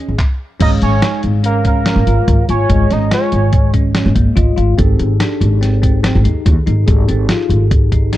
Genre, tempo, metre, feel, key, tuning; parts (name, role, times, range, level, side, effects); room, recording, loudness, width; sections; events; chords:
progressive instrumental, band music in an uneven meter; 144 BPM; 5/4; straight; A4 = 439 Hz
lead with added fifth; melody; 0.0-3.7 s; G#4 to D#5; -19 LUFS; right 4 dB; chorus
bell-like tine electric piano; arpeggios; 0.0-8.2 s; A#3 to E#4; -22 LUFS; left 3 dB; medium stereo tremolo
upright bass; bass; 0.1-8.2 s; G#1 to Eb2; -14 LUFS; equal
lo-fi sampler-style drum kit; drums; 0.2-8.2 s; crash cymbal, handclaps, hi-hat, kick drum, snare drum; -15 LUFS; equal
mellow tine electric piano; accompaniment; 0.6-8.2 s; G#3 to E#5; -22 LUFS; left 1 dB; slow stereo tremolo
little or no reverb; dark, warm production; -11 LUFS; side -14 dB against mid
0.6-8.2 A section
tine electric piano fill 4.2-4.8
0.0 G#5; 0.6 A#m7/G#; 4.8 F7/G# (rootless)